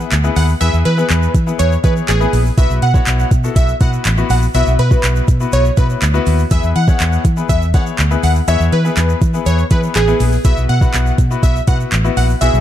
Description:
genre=dance-pop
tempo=122 BPM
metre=4/4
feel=straight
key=E major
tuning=A4 = 439 Hz
part: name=clear concert grand piano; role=accompaniment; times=0.0-12.6 s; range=B3 to C#5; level=-21 LUFS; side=left 8 dB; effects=sidechain pumping
part: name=vintage muted fingered electric bass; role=bass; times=0.0-12.6 s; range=A1 to E3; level=-15 LUFS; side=equal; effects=sidechain pumping
part: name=egg shaker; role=percussion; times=0.0-12.6 s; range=none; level=-35 LUFS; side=right 16 dB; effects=none
part: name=impact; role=sound effects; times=0.0-0.6 s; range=none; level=barely audible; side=none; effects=none
part: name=smooth R&B drum kit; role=drums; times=0.1-12.5 s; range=handclaps, hi-hat, kick drum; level=-16 LUFS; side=equal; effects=none
part: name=plucky unison lead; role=melody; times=0.4-12.6 s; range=G#4 to F#5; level=-20 LUFS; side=right 2 dB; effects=phaser, digital delay
room=little or no reverb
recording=dark, warm production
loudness=-12 LUFS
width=side -11 dB against mid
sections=0.0-12.6 A section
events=impact 0.0-0.6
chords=0.0 E; 2.6 Bsus4; 6.5 E; 10.4 Bsus4

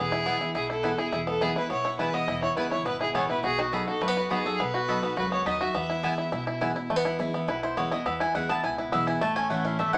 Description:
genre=bluegrass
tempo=208 BPM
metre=4/4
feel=straight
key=E major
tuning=A4 = 439 Hz
part: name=clear fiddle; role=melody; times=0.0-6.6 s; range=F#4 to E5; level=-32 LUFS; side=equal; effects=none
part: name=picked steel-string acoustic guitar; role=accompaniment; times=0.0-10.0 s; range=E2 to F#4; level=-36 LUFS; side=equal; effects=none
part: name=bluegrass banjo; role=arpeggios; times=0.0-10.0 s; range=A3 to A4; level=-31 LUFS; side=equal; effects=none
part: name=upright bass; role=bass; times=0.0-10.0 s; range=E1 to E2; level=-44 LUFS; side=equal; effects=none
part: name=mandolin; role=stabs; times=0.3-10.0 s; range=B3 to B5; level=-33 LUFS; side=equal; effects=none
room=wet studio ambience, RT60 0.5 s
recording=none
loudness=-28 LUFS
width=mono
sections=0.0-6.9 A section; 6.9-10.0 B section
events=mandolin solo 6.9-10.0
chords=0.0 E; 3.4 B; 5.7 E; 9.2 A

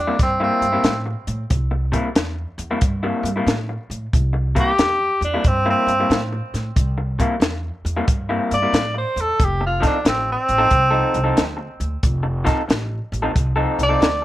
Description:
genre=electric blues shuffle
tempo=91 BPM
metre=4/4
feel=swing 66% on 8ths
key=C mixolydian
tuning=A4 = 440 Hz
part: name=mellow tenor saxophone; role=melody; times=0.0-14.2 s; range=C4 to D5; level=-19 LUFS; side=equal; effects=plate reverb
part: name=upright bass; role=bass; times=0.0-14.2 s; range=F1 to A2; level=-24 LUFS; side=equal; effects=none
part: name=electric guitar through a small old amp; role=riff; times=0.1-14.2 s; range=C3 to A4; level=-23 LUFS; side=left 2 dB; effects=spring reverb
part: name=compact cocktail drum kit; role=drums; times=0.2-14.2 s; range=hi-hat, kick drum, snare drum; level=-19 LUFS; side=equal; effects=none
room=light reverb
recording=none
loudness=-17 LUFS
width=side -15 dB against mid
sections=0.0-14.2 A section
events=none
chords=0.0 C7; 9.4 F7

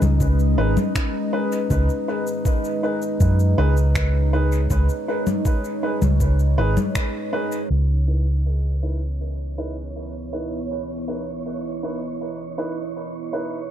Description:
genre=ambient dub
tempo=80 BPM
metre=4/4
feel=straight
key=C# minor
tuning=A4 = 440 Hz
part: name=deep dark ambient pad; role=sustained chords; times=0.0-13.7 s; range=G#3 to D#5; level=-28 LUFS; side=right 1 dB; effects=chorus, built-in reverb
part: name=vibraphone with soft mallets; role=arpeggios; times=0.0-7.7 s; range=C#4 to D#5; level=-31 LUFS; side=left 3 dB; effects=dub echo
part: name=hollow-body short-scale fingered electric bass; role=bass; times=0.0-13.7 s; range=G#1 to F#2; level=-19 LUFS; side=equal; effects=none
part: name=electronic congas, shaker and finger snaps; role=drums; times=0.0-13.7 s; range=none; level=-27 LUFS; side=left 5 dB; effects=overdrive, dub echo
part: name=electronic kick drum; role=drums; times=0.2-7.1 s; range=none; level=-22 LUFS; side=equal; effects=none
part: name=dark upright piano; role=stabs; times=0.6-13.6 s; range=D#4 to B4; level=-29 LUFS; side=right 1 dB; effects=dub echo
part: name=wind-like tuned noise texture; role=texture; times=9.4-13.7 s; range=C#5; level=-34 LUFS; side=right 6 dB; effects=built-in reverb
room=digital ambience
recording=echo-heavy mix, low-pass filter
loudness=-20 LUFS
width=side -10 dB against mid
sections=0.0-7.7 A section; 7.7-13.7 B section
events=band accent 7.0-7.3; filter sweep 7.7-13.7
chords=0.0 G#m; 7.7 C#m9

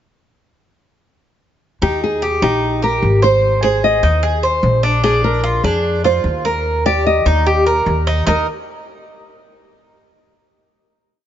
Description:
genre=latin, Cuban son and guajira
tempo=149 BPM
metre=4/4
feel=straight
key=Eb major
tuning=A4 = 440 Hz
part: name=nylon-string guitar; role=melody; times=1.8-8.5 s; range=G4 to Eb5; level=-18 LUFS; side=equal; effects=none
part: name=Cuban tres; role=arpeggios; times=1.8-8.5 s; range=D4 to Eb5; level=-18 LUFS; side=right 1 dB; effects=none
part: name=upright bass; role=bass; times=1.8-8.5 s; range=Ab1 to F2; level=-18 LUFS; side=equal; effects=none
room=light reverb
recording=nothing above 7.7 kHz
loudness=-13 LUFS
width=side -10 dB against mid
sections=1.8-8.3 A section; 8.3-9.9 final chord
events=none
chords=1.8 Eb; 3.4 Ab; 5.0 Bb7; 6.6 Eb; 8.3 Eb5

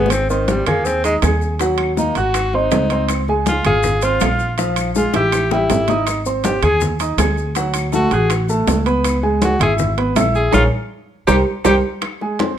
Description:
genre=Afro-Cuban jazz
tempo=161 BPM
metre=4/4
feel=straight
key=unclear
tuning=A4 = 441 Hz
part: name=clear tenor saxophone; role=melody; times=0.0-11.7 s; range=Eb3 to Ab4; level=-19 LUFS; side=left 1 dB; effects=none
part: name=clear concert grand piano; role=accompaniment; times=0.0-12.6 s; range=F3 to Ab6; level=-19 LUFS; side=right 2 dB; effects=none
part: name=upright bass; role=bass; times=0.0-11.8 s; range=Ab1 to Eb2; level=-20 LUFS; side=equal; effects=none
part: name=bongos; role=percussion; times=0.1-12.6 s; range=none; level=-26 LUFS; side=left 7 dB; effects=none
part: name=claves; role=percussion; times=0.1-12.2 s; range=none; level=-32 LUFS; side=left 4 dB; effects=none
part: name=congas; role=percussion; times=0.1-12.6 s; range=none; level=-25 LUFS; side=left 2 dB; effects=none
part: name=maracas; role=percussion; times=0.1-11.7 s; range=none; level=-32 LUFS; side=left 8 dB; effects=none
part: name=timbales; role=percussion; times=0.1-12.6 s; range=none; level=-25 LUFS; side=right 10 dB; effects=none
room=light reverb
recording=dark, warm production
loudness=-15 LUFS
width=side -10 dB against mid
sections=0.1-12.0 A section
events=tenor saxophone solo 0.0-12.0; drum fill 5.1-6.1, 11.1-12.0; band accent 10.5-12.0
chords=0.1 Ab; 1.6 Ebm; 2.3 Ab7; 3.1 Dbmaj7; 4.6 Bb5; 5.3 A5; 6.1 Ab; 7.6 D; 9.0 Dbm7; 10.5 Bbm7; 11.3 C5; 12.0 Fm (rootless)

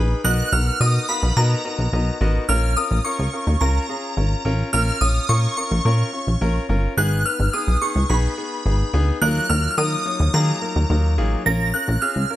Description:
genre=dance-pop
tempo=107 BPM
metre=4/4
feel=straight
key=unclear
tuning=A4 = 435 Hz
part: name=warm concert grand piano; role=accompaniment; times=0.0-12.4 s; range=Gb3 to F#5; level=-27 LUFS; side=left 2 dB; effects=none
part: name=plucky analog bass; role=bass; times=0.0-12.3 s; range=G1 to Eb3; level=-19 LUFS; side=equal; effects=none
part: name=shimmering bell with halo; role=melody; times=0.2-12.4 s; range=A#5 to Bb6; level=-23 LUFS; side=right 1 dB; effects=ensemble chorus, phaser
room=small room ambience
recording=none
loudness=-18 LUFS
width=side -14 dB against mid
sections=0.0-12.4 A section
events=none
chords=0.2 Bmaj7; 2.5 Bbm; 7.0 Abm; 9.2 Ebmadd9; 11.5 Bbm

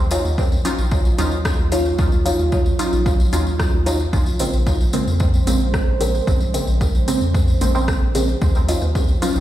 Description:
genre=dub techno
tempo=112 BPM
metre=4/4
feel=straight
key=Eb minor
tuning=A4 = 440 Hz
part: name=deep dark ambient pad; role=sustained chords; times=0.1-9.4 s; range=Gb3 to Db5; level=-28 LUFS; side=right 4 dB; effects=chorus, built-in reverb, sidechain pumping
part: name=round analog bass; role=bass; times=0.0-9.4 s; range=Bb1 to F2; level=-21 LUFS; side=equal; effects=sidechain pumping
part: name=filtered dub chord stab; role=stabs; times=0.1-9.4 s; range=Db3 to F4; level=-22 LUFS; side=equal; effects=chorus, phaser, sidechain pumping, dub echo
part: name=deep house drum kit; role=drums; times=0.1-9.3 s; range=hi-hat, rim click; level=-30 LUFS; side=left 1 dB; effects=overdrive, studio reverb, dub echo
part: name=tambourine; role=percussion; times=0.1-9.4 s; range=none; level=-32 LUFS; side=left 1 dB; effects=none
part: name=electronic kick drum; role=drums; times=0.4-9.1 s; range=none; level=-20 LUFS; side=equal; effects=overdrive, studio reverb
part: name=bongos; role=percussion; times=8.6-9.3 s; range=none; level=-40 LUFS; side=equal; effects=none
room=light reverb, digital ambience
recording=played on a big sound system in a bare room, stone room reverb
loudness=-16 LUFS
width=side -13 dB against mid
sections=0.0-9.4 A section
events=none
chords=0.0 Ebm9; 4.1 Bbm9; 8.4 Ebm9

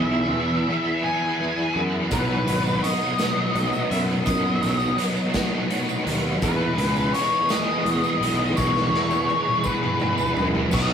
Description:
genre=psychedelic rock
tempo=56 BPM (dotted quarters)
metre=6/8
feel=straight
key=unclear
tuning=A4 = 440 Hz
part: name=octave-fuzz lead guitar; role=melody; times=0.0-10.9 s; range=B4 to G#5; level=-25 LUFS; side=left 1 dB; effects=distortion, tape echo
part: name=overdriven combo organ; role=sustained chords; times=0.0-10.9 s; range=E4 to D#6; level=-39 LUFS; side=right 4 dB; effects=none
part: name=overdriven electric guitar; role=riff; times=0.0-10.9 s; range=E2 to G#4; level=-24 LUFS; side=equal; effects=rotary speaker
part: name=fuzz fingered electric bass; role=bass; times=0.0-10.9 s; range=G#1 to F#2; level=-26 LUFS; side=equal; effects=overdrive
part: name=raw garage drum kit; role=drums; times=2.1-10.9 s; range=crash cymbal, hi-hat, kick drum, snare drum, toms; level=-27 LUFS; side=right 1 dB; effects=none
part: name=tambourine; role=percussion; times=2.1-10.9 s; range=none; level=-42 LUFS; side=right 6 dB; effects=none
room=moderate stone room reverb, RT60 1.2 s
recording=rough rehearsal-room recording, warm saturation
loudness=-20 LUFS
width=side -8 dB against mid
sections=0.0-10.7 A section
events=drum fill 8.6-10.7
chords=0.0 E; 2.1 B; 6.4 E

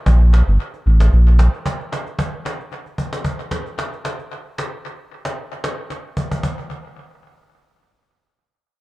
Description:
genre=afrobeats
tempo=113 BPM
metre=4/4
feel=swing 55% on 16ths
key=unclear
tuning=A4 = 441 Hz
part: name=sub bass with octave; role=bass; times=0.1-1.5 s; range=G1 to Bb1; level=-11 LUFS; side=equal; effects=none
part: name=cajon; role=drums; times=0.1-6.6 s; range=none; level=-25 LUFS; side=equal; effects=vintage 12-bit sampler grit, tape echo
room=little or no reverb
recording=echo-heavy mix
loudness=-17 LUFS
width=side -20 dB against mid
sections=0.0-6.4 A section; 6.4-8.8 B section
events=drum fill 5.9-6.4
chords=none

